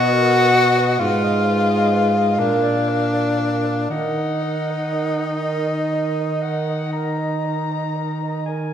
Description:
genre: classical, lyrical piece for single-reed quartet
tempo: 38-48 BPM (dotted quarters)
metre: 12/8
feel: rubato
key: Eb minor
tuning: A4 = 439 Hz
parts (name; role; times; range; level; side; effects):
- warm soprano saxophone; melody; 0.0-8.7 s; D#5 to Bb5; -26 LUFS; left 7 dB; none
- clear alto saxophone; second line; 0.0-8.7 s; Bb4 to Eb5; -28 LUFS; right 5 dB; none
- clear tenor saxophone; accompaniment; 0.0-8.4 s; D4 to F#4; -20 LUFS; left 1 dB; none
- mellow baritone saxophone; bass; 0.0-8.7 s; Ab2 to Eb3; -22 LUFS; right 1 dB; none
room: wet recital hall reverb, RT60 1.4 s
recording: heard from further back in the room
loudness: -17 LUFS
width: side -9 dB against mid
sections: 0.0-8.7 A section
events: none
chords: 0.0 Bmaj7; 1.0 Fm7b5/Ab; 2.4 Bb; 3.9 Ebm

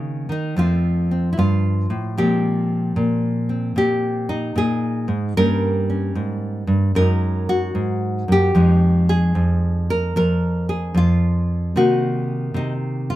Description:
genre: solo jazz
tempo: 75 BPM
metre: 4/4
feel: swing 66% on 8ths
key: F minor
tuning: A4 = 438 Hz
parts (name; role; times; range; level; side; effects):
- nylon-string guitar; solo; 0.0-13.2 s; F2 to Bb4; -17 LUFS; equal; none
room: light reverb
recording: close, detailed microphones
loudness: -17 LUFS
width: side -14 dB against mid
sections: 0.0-13.2 A section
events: none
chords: 0.0 Cm7b5 (rootless); 0.6 F; 2.2 Bb9sus4; 5.4 Gdim; 7.0 Gbsus2; 8.6 Fm7; 11.7 Cm7b5

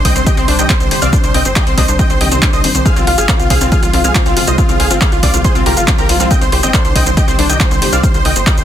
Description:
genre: uplifting trance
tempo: 139 BPM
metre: 4/4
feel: straight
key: C minor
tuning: A4 = 439 Hz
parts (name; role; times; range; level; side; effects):
- big supersaw lead; melody; 0.0-8.6 s; F4 to G5; -18 LUFS; right 1 dB; sidechain pumping, dub echo
- wide unison pluck; second line; 0.0-8.0 s; F5 to G6; -22 LUFS; equal; analog chorus, sidechain pumping, dub echo
- analog string pad; sustained chords; 0.0-8.6 s; C3 to F4; -22 LUFS; equal; ensemble chorus, sidechain pumping
- wide unison pluck; arpeggios; 0.0-8.0 s; C4 to C5; -21 LUFS; left 5 dB; sidechain pumping, dub echo
- tight sequencer bass; bass; 0.0-8.6 s; G1 to C2; -17 LUFS; equal; sidechain pumping
- electronic kick drum; drums; 0.0-8.6 s; none; -14 LUFS; equal; none
- punchy analog drum machine; drums; 0.1-8.6 s; handclaps, hi-hat, shaker; -18 LUFS; equal; none
room: digital ambience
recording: dense, heavily limited modern master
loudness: -9 LUFS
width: side -10 dB against mid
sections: 0.0-8.6 A section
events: none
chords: 0.0 Cmadd9; 2.9 Fm; 6.3 Cmadd9

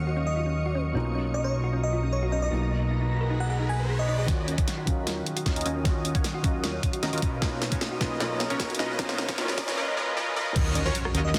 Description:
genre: future bass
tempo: 153 BPM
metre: 4/4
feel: half-time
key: Eb minor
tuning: A4 = 439 Hz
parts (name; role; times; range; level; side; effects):
- felt-muted upright piano; accompaniment; 0.0-10.6 s; B2 to F5; -37 LUFS; equal; sidechain pumping, dub echo
- shimmering ambient pad; sustained chords; 0.0-11.4 s; Eb3 to Eb6; -41 LUFS; equal; chorus, built-in reverb, sidechain pumping
- fat analog bass; bass; 0.0-11.4 s; B1 to Eb2; -32 LUFS; equal; sidechain pumping
- thumb-piano-like synth pluck; arpeggios; 0.1-11.4 s; Db4 to Cb5; -39 LUFS; equal; chorus, sidechain pumping, dub echo
- bell-like FM electric piano; melody; 0.3-4.2, 10.8-11.4 s; C#5 to Ab5; -36 LUFS; equal; chorus, sidechain pumping, digital delay
- riser and impact; sound effects; 2.7-11.4 s; none; -40 LUFS; equal; none
- supersaw stab; riff; 4.3-11.4 s; Db4 to Eb5; -33 LUFS; equal; sidechain pumping, low-pass filter, dub echo
- dubstep drum kit; drums; 4.3-11.4 s; crash cymbal, hi-hat, rim click, snare drum; -34 LUFS; equal; high-pass filter on snare, high-pass filter on hats, high-pass filter on cymbals
- electronic kick drum; drums; 4.3-10.6 s; none; -30 LUFS; equal; none
room: moderate lush hall reverb, RT60 1.9 s, digital ambience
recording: dense, heavily limited modern master, high-pass filter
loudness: -27 LUFS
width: mono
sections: 0.0-4.3 A section; 4.3-10.6 B section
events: filter sweep on ambient pad 0.0-4.3; riser 2.7-4.3; build-up 4.3-10.6; drum fill 4.3-9.8; filter sweep on supersaw synth 4.3-10.6; filter sweep 4.3-10.6; impact 10.6-11.4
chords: 0.0 Ebm9; 0.9 Bmaj9#11; 2.5 Abm9/Cb; 4.3 Ebm9; 7.2 Bmaj9#11; 8.8 Abmadd9/Cb; 10.6 Ebm9

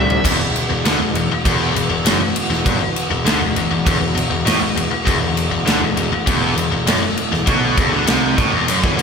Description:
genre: hard rock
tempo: 100 BPM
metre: 4/4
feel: straight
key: E minor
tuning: A4 = 440 Hz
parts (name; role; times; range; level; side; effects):
- brassy analog pad; sustained chords; 0.0-9.0 s; E3 to D5; -28 LUFS; right 1 dB; chorus
- crunchy overdriven guitar; riff; 0.0-9.0 s; E2 to G3; -22 LUFS; right 9 dB; slapback echo
- scooped high-gain guitar; riff; 0.0-9.0 s; E2 to G3; -21 LUFS; left 9 dB; distortion, slapback echo
- warm concert grand piano; bass; 0.0-9.0 s; E1 to E2; -23 LUFS; left 1 dB; none
- big rock drum kit; drums; 0.1-9.0 s; crash cymbal, kick drum, snare drum, toms; -18 LUFS; equal; none
room: moderate concert hall reverb, RT60 2.1 s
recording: big arena sound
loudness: -15 LUFS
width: side -6 dB against mid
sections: 0.2-9.0 A section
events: drum fill 0.0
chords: 0.2 E5

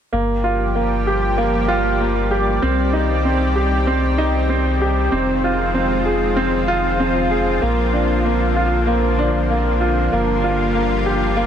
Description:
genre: electronica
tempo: 96 BPM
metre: 4/4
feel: straight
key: unclear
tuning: A4 = 440 Hz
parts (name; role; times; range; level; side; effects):
- lush unison pad; sustained chords; 0.1-11.5 s; D3 to D5; -21 LUFS; left 1 dB; chorus
- clear baby grand piano; riff; 0.1-11.5 s; Bb3 to Ab4; -19 LUFS; right 1 dB; digital delay
- round analog bass; bass; 0.1-11.5 s; F1 to C2; -22 LUFS; equal; none
room: light reverb, small room ambience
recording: none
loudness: -16 LUFS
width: side -9 dB against mid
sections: 0.1-11.5 A section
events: none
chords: 0.1 Gm7; 2.6 Cmadd9; 5.1 Fm7; 7.6 Bbadd9; 10.1 Gm7

